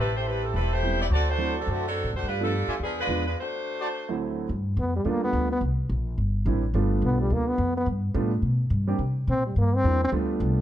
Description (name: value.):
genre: jazz, big band swing.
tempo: 213 BPM.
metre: 4/4.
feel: swing 59% on 8ths.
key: G mixolydian.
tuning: A4 = 442 Hz.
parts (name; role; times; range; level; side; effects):
warm saxophone section; melody; 0.0-4.2 s; D3 to D5; -28 LUFS; equal; none.
warm trumpet section; stabs; 0.0-3.9 s; F4 to A5; -33 LUFS; right 1 dB; none.
upright bass; bass; 0.0-10.6 s; E1 to C3; -25 LUFS; equal; none.
warm concert grand piano; accompaniment; 0.8-10.6 s; D2 to G4; -29 LUFS; right 4 dB; none.
bright trombone; melody; 4.8-10.1 s; G3 to C4; -26 LUFS; left 1 dB; none.
room: light reverb.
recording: dark, warm production.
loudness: -23 LUFS.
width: side -11 dB against mid.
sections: 0.0-4.5 A section; 4.5-10.6 B section.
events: break 3.4-4.5; trombone solo 4.5-10.6.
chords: 0.0 Am7; 1.1 D7; 2.2 G7; 2.8 E7b9; 3.4 D7; 4.5 G7; 5.6 C7; 6.7 G7; 9.0 C7.